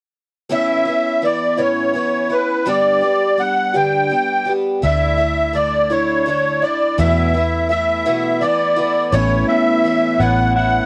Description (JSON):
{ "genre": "rock", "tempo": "56 BPM (dotted quarters)", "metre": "6/8", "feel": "straight", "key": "A major", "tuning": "A4 = 442 Hz", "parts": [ { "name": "musette accordion", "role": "melody", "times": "0.5-10.9 s", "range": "B4 to G5", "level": "-19 LUFS", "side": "equal", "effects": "cassette tape" }, { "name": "picked twelve-string acoustic guitar", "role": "accompaniment", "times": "0.5-10.9 s", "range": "E2 to G4", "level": "-23 LUFS", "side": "equal", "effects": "cassette tape" }, { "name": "vintage muted fingered electric bass", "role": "bass", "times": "4.8-10.8 s", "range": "A1 to E2", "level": "-22 LUFS", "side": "equal", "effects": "none" }, { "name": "electric guitar through a small old amp", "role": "riff", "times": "9.1-10.9 s", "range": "A2 to E4", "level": "-23 LUFS", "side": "equal", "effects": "cassette tape" } ], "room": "light reverb", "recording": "home recording on cassette", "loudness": "-17 LUFS", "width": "mono", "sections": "0.5-9.1 A section; 9.1-10.9 B section", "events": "none", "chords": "0.5 Aadd9; 2.7 G; 4.8 Dsus2; 7.0 Esus4; 9.1 Aadd9" }